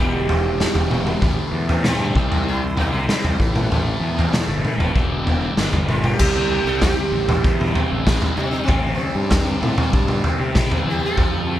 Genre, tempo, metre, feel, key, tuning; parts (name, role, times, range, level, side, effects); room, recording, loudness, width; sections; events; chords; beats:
psychedelic rock; 96 BPM; 4/4; straight; A4 = 442 Hz
sitar; melody; 0.0-11.6 s; C4 to A4; -27 LUFS; right 4 dB; analog delay
tonewheel organ; sustained chords; 0.0-11.6 s; A4 to A5; -35 LUFS; right 2 dB
thick fuzz guitar; riff; 0.0-11.6 s; E2 to E4; -25 LUFS; left 2 dB; distortion, phaser
fuzz fingered electric bass; bass; 0.0-11.6 s; E1 to C3; -24 LUFS; equal; overdrive
raw garage drum kit; drums; 0.3-11.3 s; crash cymbal, kick drum, snare drum, toms; -19 LUFS; equal
light reverb; -17 LUFS; side -12 dB against mid
0.0-6.2 A section; 6.2-11.6 B section
0.0 Em7; 1.2 Amadd9; 2.2 C; 3.4 Amadd9; 5.0 Em7; 5.6 G; 6.2 C
0.60 | 1.23 1.85 2.47 3.09 | 3.71 4.33 4.96 5.58 | 6.20 6.82 7.44 8.07 | 8.69 9.31 9.93 10.55 | 11.18